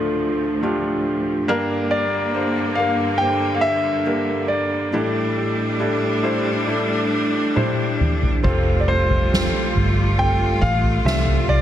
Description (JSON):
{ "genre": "pop ballad", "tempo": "69 BPM", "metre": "4/4", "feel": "straight", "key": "unclear", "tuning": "A4 = 443 Hz", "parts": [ { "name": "felt-muted upright piano", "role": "accompaniment", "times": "0.0-11.6 s", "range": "G1 to C5", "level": "-22 LUFS", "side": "equal", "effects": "none" }, { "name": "bright studio string section", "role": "sustained chords", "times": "0.0-11.6 s", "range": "D2 to F4", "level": "-25 LUFS", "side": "equal", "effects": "none" }, { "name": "clear concert grand piano", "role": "melody", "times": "1.9-11.6 s", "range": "C5 to G5", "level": "-23 LUFS", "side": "left 1 dB", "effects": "none" }, { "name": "soft-mallet drum kit", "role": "drums", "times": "7.6-11.6 s", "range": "crash cymbal, kick drum, snare drum, toms", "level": "-21 LUFS", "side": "equal", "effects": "none" }, { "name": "vintage muted fingered electric bass", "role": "bass", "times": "8.4-11.6 s", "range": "F1 to C2", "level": "-20 LUFS", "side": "right 1 dB", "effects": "none" } ], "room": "light reverb, small room ambience", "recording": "none", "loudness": "-18 LUFS", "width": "side -11 dB against mid", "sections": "0.0-8.4 A section; 8.4-11.6 B section", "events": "drum fill 7.6-8.4", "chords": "0.0 Dm; 1.5 Gm; 4.9 A7sus4; 8.4 Fadd9", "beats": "0.63 | 1.49 2.35 3.21 4.07 | 4.93 5.80 6.67 7.56 | 8.44 9.32 10.19 11.05" }